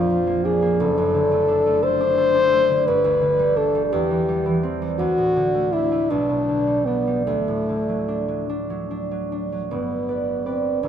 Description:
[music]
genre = classical, romantic duo for French horn and harp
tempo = 48-59 BPM (dotted quarters)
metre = 6/8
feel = rubato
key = G major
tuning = A4 = 439 Hz
[part]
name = mellow French horn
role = melody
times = 0.0-10.9 s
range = A3 to C5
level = -20 LUFS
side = left 2 dB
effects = none
[part]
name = concert harp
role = accompaniment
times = 0.0-10.9 s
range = D1 to D5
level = -23 LUFS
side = right 3 dB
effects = none
[sound]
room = moderate recital hall reverb, RT60 1.6 s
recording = close, detailed microphones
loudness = -18 LUFS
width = side -9 dB against mid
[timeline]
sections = 0.0-9.7 A section; 9.7-10.9 B section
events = none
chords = 0.0 Bb; 0.8 D/F#; 2.9 G; 3.9 C/E; 5.0 D; 6.1 G/B; 7.3 D; 9.7 G

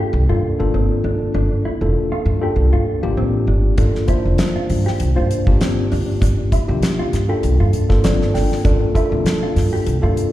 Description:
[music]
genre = electric jazz fusion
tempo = 99 BPM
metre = 4/4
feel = swing 54% on 16ths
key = G dorian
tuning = A4 = 439 Hz
[part]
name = mellow tine electric piano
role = accompaniment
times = 0.0-10.3 s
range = Bb3 to G5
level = -21 LUFS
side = left 1 dB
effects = medium stereo tremolo, slapback echo
[part]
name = mellow electric guitar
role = stabs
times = 0.0-10.3 s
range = C4 to G4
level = -27 LUFS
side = equal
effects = wide subtle chorus, slapback echo
[part]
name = upright bass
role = bass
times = 0.1-10.1 s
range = F1 to G2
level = -18 LUFS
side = equal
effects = none
[part]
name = damped 70s drum kit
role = drums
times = 3.8-10.3 s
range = hi-hat, kick drum, snare drum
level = -20 LUFS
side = equal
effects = none
[sound]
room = small room ambience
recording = live gig heard through the venue's PA, recital hall reverb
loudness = -15 LUFS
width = side -14 dB against mid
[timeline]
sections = 0.0-10.3 A section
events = tine electric piano fill 7.7-8.7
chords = 0.0 Gm9

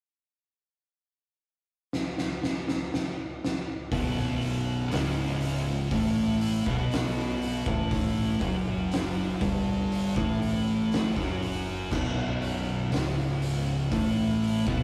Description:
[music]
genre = stoner and doom metal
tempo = 60 BPM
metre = 4/4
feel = straight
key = unclear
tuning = A4 = 440 Hz
[part]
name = oversized low-tuned drum kit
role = drums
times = 1.9-14.8 s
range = crash cymbal, hi-hat, kick drum, snare drum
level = -33 LUFS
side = equal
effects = none
[part]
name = thick fuzz guitar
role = riff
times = 3.9-14.8 s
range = B1 to B3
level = -31 LUFS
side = equal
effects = distortion
[part]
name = thick fuzz guitar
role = riff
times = 3.9-14.8 s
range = B1 to B3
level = -38 LUFS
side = equal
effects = distortion
[part]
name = fuzz fingered electric bass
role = bass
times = 3.9-14.8 s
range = B0 to B1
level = -36 LUFS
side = equal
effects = overdrive
[sound]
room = moderate small room reverb, RT60 0.5 s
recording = rough rehearsal-room recording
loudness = -28 LUFS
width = mono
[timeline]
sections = 0.0-3.9 A section; 3.9-14.8 B section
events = drum fill 1.9-3.9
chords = 0.0 N.C.; 3.9 B5

